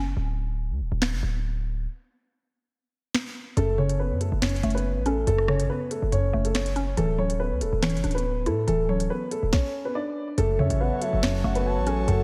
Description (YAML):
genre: hip hop, drill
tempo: 141 BPM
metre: 4/4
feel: half-time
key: F# minor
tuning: A4 = 440 Hz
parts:
  - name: mallet-like synth pluck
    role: accompaniment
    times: 0.0-0.2, 3.6-12.2 s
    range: F#2 to E4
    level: -30 LUFS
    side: equal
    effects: chorus, phaser
  - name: hard-hitting 808-style bass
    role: bass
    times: 0.0-12.2 s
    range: D1 to A2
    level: -29 LUFS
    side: equal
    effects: none
  - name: drill drum kit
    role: drums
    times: 1.0-12.2 s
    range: finger snaps, hi-hat, kick drum, rim click, snare drum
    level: -31 LUFS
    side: equal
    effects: vintage 12-bit sampler grit
  - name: dark upright piano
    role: melody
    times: 3.6-12.2 s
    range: A3 to D5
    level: -30 LUFS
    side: equal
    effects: delay
  - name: airy breathy pad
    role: sustained chords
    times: 10.6-12.2 s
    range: F#3 to C#5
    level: -34 LUFS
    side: equal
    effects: chorus
  - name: gliding portamento lead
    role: second line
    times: 10.6-12.2 s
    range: E5 to A5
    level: -33 LUFS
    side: equal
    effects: chorus, delay
room: light reverb, digital ambience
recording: none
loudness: -26 LUFS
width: mono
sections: 0.0-10.4 A section; 10.4-12.2 B section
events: break 0.0-3.6; stop 9.5-10.4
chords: 0.2 N.C.; 3.6 F#m; 7.0 Dadd9; 10.4 F#m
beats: | 0.17 0.59 1.02 1.44 | 1.87 2.29 2.72 3.14 | 3.57 4.00 4.42 4.85 | 5.27 5.70 6.12 6.55 | 6.97 7.40 7.83 8.25 | 8.68 9.10 9.53 9.95 | 10.38 10.80 11.23 11.65 | 12.08